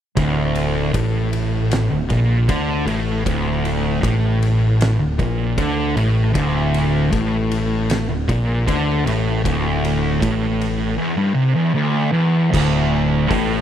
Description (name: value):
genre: stoner and doom metal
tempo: 78 BPM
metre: 4/4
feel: straight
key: unclear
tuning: A4 = 441 Hz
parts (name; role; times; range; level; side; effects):
- fuzz guitar; riff; 0.2-13.6 s; D2 to D3; -18 LUFS; equal; distortion
- fingered electric bass; bass; 0.2-13.6 s; D1 to D2; -23 LUFS; equal; overdrive
- oversized low-tuned drum kit; drums; 0.2-13.5 s; crash cymbal, hi-hat, kick drum, ride cymbal, snare drum; -26 LUFS; equal; none
room: little or no reverb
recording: none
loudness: -16 LUFS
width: side -10 dB against mid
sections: 0.2-12.5 A section; 12.5-13.6 B section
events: none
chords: 0.2 D5